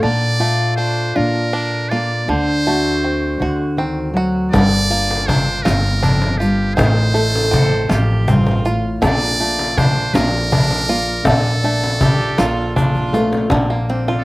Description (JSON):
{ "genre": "acoustic folk duo or small band", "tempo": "53 BPM (dotted quarters)", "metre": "6/8", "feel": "straight", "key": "Bb major", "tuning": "A4 = 440 Hz", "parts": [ { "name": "trumpet with metal mute", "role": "melody", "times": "0.0-14.2 s", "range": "G4 to D5", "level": "-21 LUFS", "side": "right 1 dB", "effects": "none" }, { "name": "fingerpicked steel-string acoustic guitar", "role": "accompaniment", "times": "0.0-14.2 s", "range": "F2 to A4", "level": "-20 LUFS", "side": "left 1 dB", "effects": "none" }, { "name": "bluegrass banjo", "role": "arpeggios", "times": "0.0-14.2 s", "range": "D3 to F#4", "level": "-23 LUFS", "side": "right 2 dB", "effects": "slapback echo" }, { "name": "upright bass", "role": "bass", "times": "0.0-14.2 s", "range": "G1 to Bb2", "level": "-21 LUFS", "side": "equal", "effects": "none" }, { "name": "natural country drum kit", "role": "drums", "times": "4.5-14.1 s", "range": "hi-hat, kick drum, ride cymbal, snare drum", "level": "-22 LUFS", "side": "equal", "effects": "none" }, { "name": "cajon", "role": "percussion", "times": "4.5-14.2 s", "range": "none", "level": "-18 LUFS", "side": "left 1 dB", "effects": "none" }, { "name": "rich fiddle", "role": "second line", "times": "7.5-13.5 s", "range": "F4 to A4", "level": "-26 LUFS", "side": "right 2 dB", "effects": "none" } ], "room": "little or no reverb", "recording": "recorded outdoors, with no room sound", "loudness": "-14 LUFS", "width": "side -20 dB against mid", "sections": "0.0-13.5 A section", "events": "drum fill 13.0-13.5", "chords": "0.0 Bbmaj7; 2.3 D7; 4.5 Gm7; 6.8 F7/A; 9.0 Bbmaj7; 13.5 Bbadd9" }